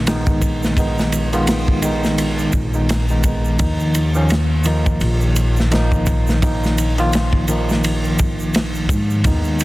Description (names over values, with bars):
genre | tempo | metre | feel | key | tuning
trip hop | 85 BPM | 4/4 | swing 58% on 16ths | unclear | A4 = 440 Hz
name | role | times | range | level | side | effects
bell-like tine electric piano | accompaniment | 0.0-9.6 s | Eb3 to F4 | -20 LUFS | equal | harmonic tremolo, vintage 12-bit sampler grit, low-pass filter, tape echo
upright bass | bass | 0.0-9.6 s | Bb1 to Ab2 | -20 LUFS | equal | none
crunchy breakbeat drum kit | drums | 0.1-9.6 s | kick drum, ride cymbal, snare drum | -20 LUFS | equal | none
egg shaker | percussion | 0.1-9.6 s | none | -33 LUFS | right 6 dB | none
room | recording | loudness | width
studio ambience | dense, heavily limited modern master | -15 LUFS | side -18 dB against mid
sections
0.0-9.6 A section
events
none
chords
0.0 Abm; 3.6 Ebsus2